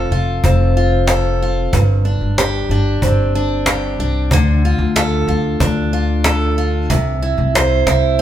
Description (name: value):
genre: acoustic pop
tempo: 93 BPM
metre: 4/4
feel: straight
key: unclear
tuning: A4 = 441 Hz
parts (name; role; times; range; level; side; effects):
- picked steel-string acoustic guitar; accompaniment; 0.0-8.2 s; G2 to C5; -18 LUFS; right 2 dB; none
- upright bass; bass; 0.0-8.2 s; F1 to D2; -16 LUFS; left 1 dB; none
- cajon; drums; 0.4-8.0 s; none; -19 LUFS; equal; none
room: wet large studio reverb, RT60 1.4 s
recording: band playing live in one room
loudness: -13 LUFS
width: side -11 dB against mid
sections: 0.0-8.2 A section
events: none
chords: 0.0 F; 1.7 Gsus4; 4.3 Dm; 6.9 C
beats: 0.44 1.08 | 1.73 2.38 3.02 3.67 | 4.32 4.96 5.61 6.25 | 6.90 7.54 8.19